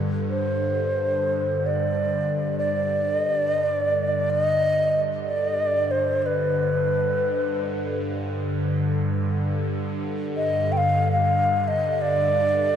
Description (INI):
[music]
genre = world meditative, free-time meditation music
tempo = free time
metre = none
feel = none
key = G major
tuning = A4 = 443 Hz
[part]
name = evolving wavetable pad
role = drone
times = 0.0-12.8 s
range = G2 to D3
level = -26 LUFS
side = equal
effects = phaser, built-in reverb
[part]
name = breathy bright xiao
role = melody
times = 0.3-12.8 s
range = B4 to G5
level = -23 LUFS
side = equal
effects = tape echo
[sound]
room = moderate huge ambient reverb, RT60 7.9 s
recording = dark, warm production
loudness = -21 LUFS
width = side -8 dB against mid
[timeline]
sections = 0.0-12.8 A section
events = none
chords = none